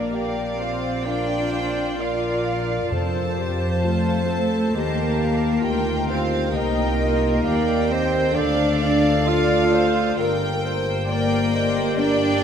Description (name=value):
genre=cinematic, emotional film score for orchestra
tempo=66 BPM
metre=4/4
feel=rubato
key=Bb major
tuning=A4 = 440 Hz
part: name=clear studio violin section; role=melody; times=0.0-12.4 s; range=F5 to A5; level=-31 LUFS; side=right 1 dB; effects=none
part: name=mellow hollow silver concert flute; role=second line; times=0.0-12.4 s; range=Bb4 to G5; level=-31 LUFS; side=left 3 dB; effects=none
part: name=warm clarinet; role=second line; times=0.0-12.4 s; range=A4 to F5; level=-30 LUFS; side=right 4 dB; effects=none
part: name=warm studio violin section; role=second line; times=0.0-12.4 s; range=A4 to F5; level=-32 LUFS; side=left 1 dB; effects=none
part: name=warm studio viola section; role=accompaniment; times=0.0-12.4 s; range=D4 to Eb5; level=-27 LUFS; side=left 1 dB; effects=none
part: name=dark French horn section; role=sustained chords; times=0.0-12.4 s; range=Bb3 to D5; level=-29 LUFS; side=equal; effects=none
part: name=dark studio double bass section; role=bass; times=0.0-12.4 s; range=G1 to F2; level=-26 LUFS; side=equal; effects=none
part: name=rich chamber cello section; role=bass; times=0.0-12.4 s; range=A3 to F4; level=-24 LUFS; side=equal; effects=none
part: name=timpani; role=percussion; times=2.9-4.3 s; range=F2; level=-31 LUFS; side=right 1 dB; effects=none
room=wet cathedral reverb, RT60 5.0 s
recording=in a vast, echoing space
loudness=-19 LUFS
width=side -8 dB against mid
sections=0.0-12.4 A section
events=none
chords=0.0 Bb; 2.9 F; 4.8 Eb; 6.5 Cm; 8.4 Dm; 10.2 Gm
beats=0.15 1.08 2.01 | 2.93 3.84 4.75 5.65 | 6.54 7.45 8.36 9.28 | 10.19 11.09 12.00